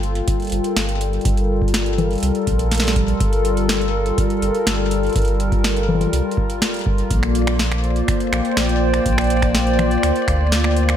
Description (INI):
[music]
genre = IDM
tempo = 123 BPM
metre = 4/4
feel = straight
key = G minor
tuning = A4 = 440 Hz
[part]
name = hollow soft pad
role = sustained chords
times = 0.0-11.0 s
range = G3 to G5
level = -20 LUFS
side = left 1 dB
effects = chorus, shimmer reverb
[part]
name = warm sub bass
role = bass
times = 0.0-10.9 s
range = G1 to D2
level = -21 LUFS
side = equal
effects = none
[part]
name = booming analog drum machine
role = drums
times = 0.0-11.0 s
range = congas, finger snaps, hi-hat, snare drum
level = -23 LUFS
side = left 1 dB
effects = ping-pong delay
[part]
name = electronic kick drum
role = drums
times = 0.3-10.4 s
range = none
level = -22 LUFS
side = equal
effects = none
[sound]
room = light reverb, digital ambience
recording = none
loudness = -16 LUFS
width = side -10 dB against mid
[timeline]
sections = 0.0-11.0 A section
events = none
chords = 0.0 Gm7; 7.1 Bb6